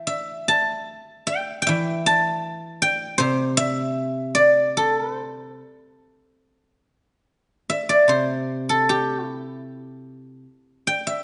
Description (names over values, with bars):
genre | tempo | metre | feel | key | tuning
chinese traditional, Chinese solo plucked strings | 71-81 BPM | 2/4 | rubato | C gong mode | A4 = 441 Hz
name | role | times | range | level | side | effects
guzheng | solo | 0.0-11.2 s | C3 to C6 | -22 LUFS | equal | none
room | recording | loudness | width
moderate scoring stage reverb, RT60 1.6 s | nothing above 10.4 kHz | -22 LUFS | mono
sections
0.0-6.4 A section; 6.4-11.2 B section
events
none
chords
none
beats
| 0.10 0.91 | 1.70 2.47 | 3.21 3.97 | 4.77 5.60 | 6.44 7.27 | 8.08 8.88 | 9.66 10.44